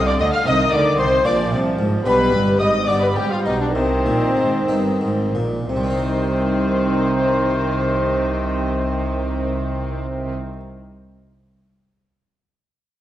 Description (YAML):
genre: classical, baroque-style concerto movement with solo episodes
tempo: 57-76 BPM (dotted quarters)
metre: 6/8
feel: straight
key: C minor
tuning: A4 = 442 Hz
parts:
  - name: warm studio violin section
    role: melody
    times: 0.0-10.3 s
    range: C5 to F6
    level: -28 LUFS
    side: left 3 dB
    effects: none
  - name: dark chamber viola section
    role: accompaniment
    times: 0.0-10.3 s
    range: D3 to G3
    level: -24 LUFS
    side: equal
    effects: none
  - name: harpsichord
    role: accompaniment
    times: 0.0-10.6 s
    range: G2 to C5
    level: -27 LUFS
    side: equal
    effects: none
  - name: warm chamber cello section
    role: bass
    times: 0.0-10.3 s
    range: G2 to D3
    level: -26 LUFS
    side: right 2 dB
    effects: none
  - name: warm studio double bass section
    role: bass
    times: 0.0-10.3 s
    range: G1 to D2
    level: -25 LUFS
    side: right 1 dB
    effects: none
  - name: dark trumpet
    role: melody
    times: 0.1-10.3 s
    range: C4 to F5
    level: -24 LUFS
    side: left 1 dB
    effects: none
  - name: warm chamber violin section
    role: second line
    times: 0.1-10.3 s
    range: C4 to F5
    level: -24 LUFS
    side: left 1 dB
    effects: none
room: wet scoring stage reverb, RT60 1.5 s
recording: worn, warbling old tape, cassette tape, warbly pitch drift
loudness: -17 LUFS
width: side -13 dB against mid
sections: 0.0-5.7 A section; 5.7-9.9 B section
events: slowing down 1.3-5.7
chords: 0.5 Cm; 1.3 Bb; 2.0 G; 3.7 Cm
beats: | 0.46 1.25 | 2.05 2.88 | 3.75 4.68 | 5.70 6.74 | 7.78 8.83